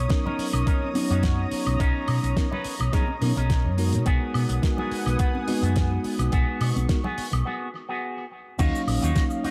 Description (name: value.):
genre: nu-disco, nu disco.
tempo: 106 BPM.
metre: 4/4.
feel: swing 54% on 16ths.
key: unclear.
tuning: A4 = 440 Hz.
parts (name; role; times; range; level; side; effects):
lush unison pad; sustained chords; 0.0-9.5 s; B3 to Eb6; -37 LUFS; equal; chorus, sidechain pumping.
hollow-body short-scale fingered electric bass; bass; 0.0-9.5 s; Bb1 to B2; -27 LUFS; equal; none.
bell-like tine electric piano; accompaniment; 0.1-9.5 s; F#3 to F5; -32 LUFS; equal; sidechain pumping, tape echo.
damped 70s drum kit; drums; 0.1-9.5 s; crash cymbal, hi-hat, shaker, snare drum, woodblock; -35 LUFS; equal; tape echo.
electronic kick drum; drums; 0.1-9.3 s; none; -26 LUFS; equal; none.
electric guitar with an envelope filter; riff; 0.2-9.5 s; B3 to Db5; -35 LUFS; equal; lush chorus, tape echo.
congas; percussion; 0.3-7.2 s; none; -40 LUFS; equal; none.
room: light reverb, small room ambience.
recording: echo-heavy mix.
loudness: -24 LUFS.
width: mono.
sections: 0.0-8.6 A section.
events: break 7.5-8.6.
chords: 0.0 Bmaj9; 8.6 Ebm9.